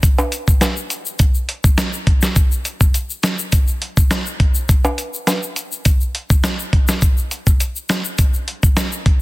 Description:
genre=dancehall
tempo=103 BPM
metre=4/4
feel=straight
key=none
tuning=none
part: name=dusty soul sampler-style drum kit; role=drums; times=0.0-9.2 s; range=hi-hat, kick drum, rim click, snare drum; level=-15 LUFS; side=equal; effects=none
part: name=egg shaker and timbales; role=percussion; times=0.0-9.1 s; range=none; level=-24 LUFS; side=left 2 dB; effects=none
room=little or no reverb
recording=dense, heavily limited modern master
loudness=-15 LUFS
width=side -20 dB against mid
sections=0.0-9.2 A section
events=none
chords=none

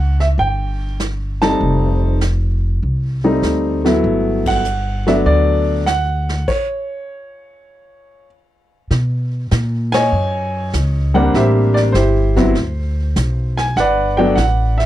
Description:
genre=jazz piano trio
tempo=99 BPM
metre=4/4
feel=swing 69% on 8ths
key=G major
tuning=A4 = 440 Hz
part: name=warm baby grand piano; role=melody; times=0.0-14.9 s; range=F#3 to A5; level=-16 LUFS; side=equal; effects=slapback echo
part: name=upright bass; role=bass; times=0.0-14.9 s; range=F1 to B2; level=-17 LUFS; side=equal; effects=none
part: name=vintage brush drum kit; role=drums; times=0.2-14.9 s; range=brushed snare drum, crash cymbal, hi-hat, kick drum, ride cymbal, snare drum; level=-27 LUFS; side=right 1 dB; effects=none
room=little or no reverb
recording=dry, close 1970s-style studio recording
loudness=-14 LUFS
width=side -13 dB against mid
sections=0.0-8.9 A section; 8.9-14.9 B section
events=band accent 4.3-4.6, 9.8-10.1; stop 6.5-8.9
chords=0.0 N.C.; 1.6 F9; 4.0 Gmaj7; 6.5 N.C.; 8.9 Bmaj9; 11.3 Am11; 12.6 N.C.; 13.8 Gmaj7

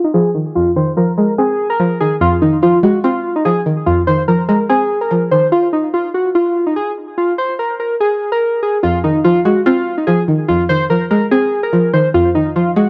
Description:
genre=hip hop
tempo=145 BPM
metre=4/4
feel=half-time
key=F minor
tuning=A4 = 440 Hz
part: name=warbly lo-fi synth keys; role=melody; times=0.0-12.9 s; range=Eb4 to C5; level=-17 LUFS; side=equal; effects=chorus, phaser, low-pass filter, analog delay
part: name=string-like resonator pluck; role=accompaniment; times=0.0-5.5, 8.8-12.9 s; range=F2 to C4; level=-17 LUFS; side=equal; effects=chorus, low-pass filter
room=little or no reverb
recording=dry, gritty hardware recording, cassette tape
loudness=-15 LUFS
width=mono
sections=0.0-12.9 A section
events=filter sweep 0.0-2.2; break 5.5-8.8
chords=0.0 Fm7; 5.5 N.C.; 8.8 Fm7

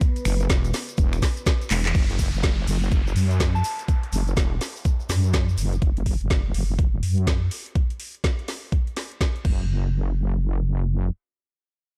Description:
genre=bass house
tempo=124 BPM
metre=4/4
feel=swing 62% on 16ths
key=unclear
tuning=A4 = 438 Hz
part: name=deep dark ambient pad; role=sustained chords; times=0.0-1.9 s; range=C#4 to B4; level=-40 LUFS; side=equal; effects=chorus, built-in reverb, sidechain pumping
part: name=electronic kick drum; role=drums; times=0.0-9.6 s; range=none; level=-24 LUFS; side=equal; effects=overdrive
part: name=garage drum kit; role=drums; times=0.0-9.6 s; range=crash cymbal, finger snaps, handclaps, hi-hat, snare drum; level=-32 LUFS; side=equal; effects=overdrive
part: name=egg shaker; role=percussion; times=0.0-5.8 s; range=none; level=-42 LUFS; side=equal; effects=none
part: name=wobble bass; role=bass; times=0.3-11.1 s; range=E1 to F#2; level=-25 LUFS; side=equal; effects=chorus, tube saturation, sidechain pumping
part: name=downlifter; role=sound effects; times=1.9-5.8 s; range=none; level=-40 LUFS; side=equal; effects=none
part: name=soft synth bell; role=melody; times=3.5-3.7 s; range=A5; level=-34 LUFS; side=equal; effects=chorus, phaser, tape echo
room=little or no reverb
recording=dark, warm production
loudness=-23 LUFS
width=mono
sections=0.0-1.9 A section; 1.9-9.7 B section; 9.7-12.0 C section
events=drop 0.0-1.9; drum fill 1.7; band accent 1.8; filter sweep on wobble bass 1.9-7.8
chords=none

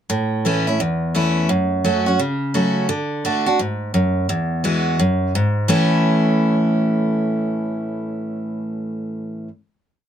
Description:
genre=country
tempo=172 BPM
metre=4/4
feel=swing 64% on 8ths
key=A major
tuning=A4 = 440 Hz
part: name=picked steel-string acoustic guitar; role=solo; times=0.1-9.5 s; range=E2 to F#4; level=-17 LUFS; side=equal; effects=none
room=moderate booth ambience, RT60 0.3 s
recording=none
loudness=-17 LUFS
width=side -9 dB against mid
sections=0.1-5.7 interlude; 5.7-8.5 final chord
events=none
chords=0.1 A; 1.5 F#m; 2.9 D; 4.3 Eadd9; 5.7 A

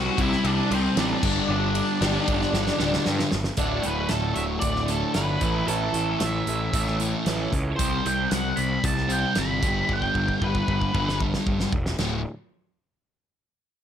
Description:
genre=quiet-loud alternative rock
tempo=114 BPM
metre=4/4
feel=straight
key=D major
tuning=A4 = 440 Hz
part: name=octave-fuzz lead guitar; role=melody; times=0.0-11.2 s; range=C4 to B5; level=-28 LUFS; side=right 1 dB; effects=distortion
part: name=fuzz guitar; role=riff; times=0.0-12.2 s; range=D2 to C4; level=-27 LUFS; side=left 1 dB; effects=distortion
part: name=fuzz picked electric bass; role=bass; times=0.0-12.2 s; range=D1 to G2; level=-28 LUFS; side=equal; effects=overdrive
part: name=loose indie drum kit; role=drums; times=0.2-12.1 s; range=crash cymbal, hi-hat, kick drum, ride cymbal, snare drum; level=-28 LUFS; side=equal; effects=none
part: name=picked swing-style acoustic guitar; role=arpeggios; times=3.6-7.8 s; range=D2 to A4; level=-32 LUFS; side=right 5 dB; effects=slapback echo
room=light reverb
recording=none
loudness=-22 LUFS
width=side -9 dB against mid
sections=0.0-3.6 A section; 3.6-12.0 B section; 12.0-13.8 C section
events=drum fill 2.5-3.6, 9.9-12.0; lead electric guitar solo 3.6-12.0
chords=0.0 C; 1.2 G5; 3.6 D; 5.4 A; 7.8 C5; 9.6 G; 12.0 D5

